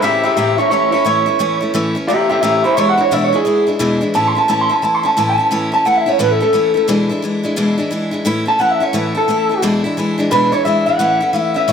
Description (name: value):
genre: rock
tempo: 175 BPM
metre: 4/4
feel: swing 62% on 8ths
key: A major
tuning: A4 = 440 Hz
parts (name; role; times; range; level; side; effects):
- electric guitar through a small old amp; melody; 0.0-11.7 s; E4 to C6; -14 LUFS; equal; spring reverb, tape echo
- picked steel-string acoustic guitar; accompaniment; 0.0-11.7 s; E2 to E4; -17 LUFS; left 1 dB; none
room: light reverb, small room ambience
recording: none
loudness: -13 LUFS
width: side -7 dB against mid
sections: 0.0-5.5 A section; 5.5-11.7 B section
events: none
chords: 0.0 A; 2.8 E7; 4.1 A; 6.9 E7; 8.3 A; 9.6 E7; 11.0 A